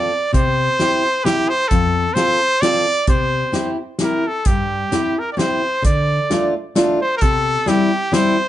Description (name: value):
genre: alpine folk, alpine dance band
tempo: 131 BPM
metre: 3/4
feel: swing 54% on 8ths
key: unclear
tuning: A4 = 440 Hz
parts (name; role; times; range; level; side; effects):
- bright trumpet; melody; 0.0-8.5 s; G4 to D5; -18 LUFS; right 1 dB; plate reverb
- fingerpicked steel-string acoustic guitar; accompaniment; 0.0-8.4 s; F2 to A4; -19 LUFS; left 2 dB; none
- natural country drum kit; drums; 0.3-8.3 s; hi-hat, kick drum, snare drum; -20 LUFS; equal; none
room: moderate small room reverb, RT60 0.6 s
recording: nothing above 10.7 kHz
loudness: -15 LUFS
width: side -13 dB against mid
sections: 0.0-8.5 A section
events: none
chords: 0.3 C; 1.7 F; 3.1 C; 5.9 Dm; 7.2 C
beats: | 0.34 0.80 1.25 | 1.71 2.17 2.62 | 3.08 3.54 4.00 | 4.47 4.93 5.39 | 5.85 6.31 6.77 | 7.22 7.68 8.14